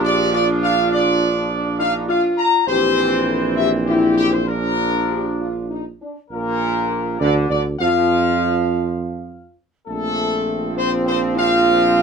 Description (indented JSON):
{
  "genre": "classical, ceremonial fanfare",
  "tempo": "101 BPM",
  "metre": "3/4",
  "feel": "straight",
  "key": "Bb major",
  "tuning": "A4 = 438 Hz",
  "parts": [
    { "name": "mellow trumpet section", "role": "melody", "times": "0.0-12.0 s", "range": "G4 to Bb5", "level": "-20 LUFS", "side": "left 2 dB", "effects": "none" },
    { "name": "dark French horn section", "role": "sustained chords", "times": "0.0-12.0 s", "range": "A3 to A4", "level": "-22 LUFS", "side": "left 1 dB", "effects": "none" },
    { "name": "warm trombone section", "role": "sustained chords", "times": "0.0-12.0 s", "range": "Bb2 to D4", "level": "-24 LUFS", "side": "right 3 dB", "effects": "none" },
    { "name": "dark tuba", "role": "bass", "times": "0.0-12.0 s", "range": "Bb1 to F2", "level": "-22 LUFS", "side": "right 4 dB", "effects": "none" }
  ],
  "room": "moderate studio ambience, RT60 0.5 s",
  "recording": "minimal, uncompressed stereo recording",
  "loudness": "-16 LUFS",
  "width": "side -6 dB against mid",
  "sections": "0.0-6.3 A section; 6.3-12.0 B section",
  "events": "none",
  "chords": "0.0 Bb; 2.7 C/Bb; 4.5 Bb; 9.9 F/Bb"
}